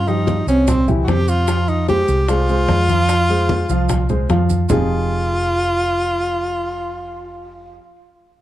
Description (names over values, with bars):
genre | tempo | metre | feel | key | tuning
Afro-Cuban jazz | 149 BPM | 4/4 | straight | F minor | A4 = 441 Hz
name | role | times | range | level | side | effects
breathy tenor saxophone | melody | 0.0-7.8 s | C4 to G4 | -20 LUFS | equal | tape echo
hollow-body short-scale fingered electric bass | bass | 0.0-7.8 s | F1 to G2 | -19 LUFS | equal | none
dark baby grand piano | accompaniment | 0.1-7.8 s | C3 to F5 | -21 LUFS | equal | none
bongos | percussion | 0.1-4.8 s | none | -26 LUFS | left 4 dB | none
congas | percussion | 0.1-4.8 s | none | -24 LUFS | equal | none
maracas | percussion | 0.1-4.8 s | none | -34 LUFS | right 9 dB | none
room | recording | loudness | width
light reverb | dark, warm production | -15 LUFS | side -14 dB against mid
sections
0.0-4.7 A section; 4.7-7.9 B section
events
none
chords
0.0 Eb13; 0.7 C; 1.5 Fm; 4.7 Fm9